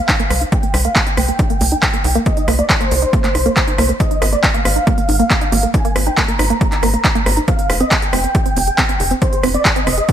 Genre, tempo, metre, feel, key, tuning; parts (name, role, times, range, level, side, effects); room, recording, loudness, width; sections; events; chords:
uplifting trance; 138 BPM; 4/4; straight; C minor; A4 = 441 Hz
big supersaw lead; melody; 0.0-10.1 s; C5 to Bb5; -21 LUFS; right 1 dB; sidechain pumping, low-pass filter, tape echo
wide unison pluck; arpeggios; 0.0-10.1 s; Bb3 to Ab4; -21 LUFS; right 3 dB; sidechain pumping, tape echo
big-room dance drum kit; drums; 0.1-10.1 s; handclaps, hi-hat, rim click; -18 LUFS; equal; overdrive
electronic kick drum; drums; 0.1-10.1 s; -17 LUFS; equal; overdrive
tight sequencer bass; bass; 0.3-10.0 s; F1 to C2; -18 LUFS; equal; sidechain pumping
little or no reverb; -13 LUFS; side -10 dB against mid
0.0-10.1 A section
0.0 Cm7; 4.0 Absus2; 7.5 Fm